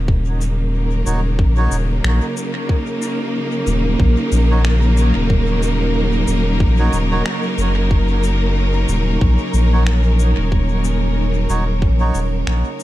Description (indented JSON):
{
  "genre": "ambient dub",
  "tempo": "92 BPM",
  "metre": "4/4",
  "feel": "swing 57% on 16ths",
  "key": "Eb minor",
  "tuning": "A4 = 440 Hz",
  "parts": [
    { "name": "rich studio string section", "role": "sustained chords", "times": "0.0-12.8 s", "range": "Db3 to Bb4", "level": "-20 LUFS", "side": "equal", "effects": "none" },
    { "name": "warm sub bass", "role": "bass", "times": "0.0-12.6 s", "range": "Eb1 to Bb1", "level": "-16 LUFS", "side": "equal", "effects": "none" },
    { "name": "electronic kick drum", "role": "drums", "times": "0.1-12.0 s", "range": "none", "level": "-17 LUFS", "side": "equal", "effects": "none" },
    { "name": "electronic cabasa and finger snaps", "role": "drums", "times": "0.4-12.8 s", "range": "none", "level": "-30 LUFS", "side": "left 2 dB", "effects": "dub echo" },
    { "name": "melodica", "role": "stabs", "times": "1.1-12.2 s", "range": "Eb4 to Db5", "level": "-28 LUFS", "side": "right 3 dB", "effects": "vintage 12-bit sampler grit, dub echo" },
    { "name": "drifting glass-harmonics texture", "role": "texture", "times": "8.6-12.8 s", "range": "Db4 to Db5", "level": "-30 LUFS", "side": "right 3 dB", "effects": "chorus, built-in reverb" }
  ],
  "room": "digital ambience",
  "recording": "none",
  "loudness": "-15 LUFS",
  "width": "side -15 dB against mid",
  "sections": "0.0-12.8 A section",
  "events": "fade-out 11.4-12.8",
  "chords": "0.0 Ebm7",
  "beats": "| 0.08 0.73 1.39 2.04 | 2.69 3.34 3.99 4.65 | 5.30 5.95 6.60 7.25 | 7.91 8.56 9.21 9.86 | 10.52 11.17 11.82 12.47"
}